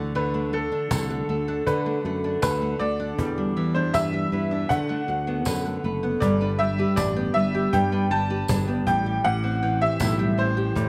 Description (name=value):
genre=acoustic pop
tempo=79 BPM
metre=4/4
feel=straight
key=G major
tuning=A4 = 440 Hz
part: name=nylon-string guitar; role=accompaniment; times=0.0-10.9 s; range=E2 to G4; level=-28 LUFS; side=equal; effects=none
part: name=bowl-back mandolin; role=arpeggios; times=0.0-10.9 s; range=G3 to G5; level=-40 LUFS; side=equal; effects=slapback echo
part: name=sustaining fretless electric bass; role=bass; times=0.0-10.9 s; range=F#1 to D3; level=-32 LUFS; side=equal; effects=none
part: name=bright upright piano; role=melody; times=0.2-10.9 s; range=A4 to A5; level=-29 LUFS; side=equal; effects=none
part: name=cajon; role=drums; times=0.9-10.9 s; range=none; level=-32 LUFS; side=equal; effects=none
part: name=tambourine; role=percussion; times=0.9-10.2 s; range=none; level=-40 LUFS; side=equal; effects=none
room=little or no reverb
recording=recorded outdoors, with no room sound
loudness=-24 LUFS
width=mono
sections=0.0-6.2 A section; 6.2-10.9 B section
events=none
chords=0.0 D; 3.2 Em7; 4.7 D6; 6.2 G; 8.9 Am7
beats=| 0.15 0.91 1.67 2.43 | 3.19 3.95 4.70 5.46 | 6.22 6.98 7.73 8.49 | 9.25 10.00 10.76